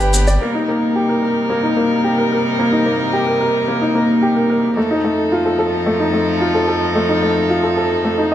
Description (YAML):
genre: electronica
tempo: 110 BPM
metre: 4/4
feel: straight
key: C dorian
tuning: A4 = 441 Hz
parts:
  - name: warm string quartet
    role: sustained chords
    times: 0.0-8.3 s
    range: F2 to G5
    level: -20 LUFS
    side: left 1 dB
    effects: none
  - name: warm upright piano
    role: riff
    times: 0.0-8.3 s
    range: A3 to D5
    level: -16 LUFS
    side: equal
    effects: digital delay
room: moderate lush hall reverb, RT60 1.6 s, studio reverb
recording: none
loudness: -14 LUFS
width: side -11 dB against mid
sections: 0.4-8.3 A section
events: none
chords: 0.4 Cm7; 4.8 F7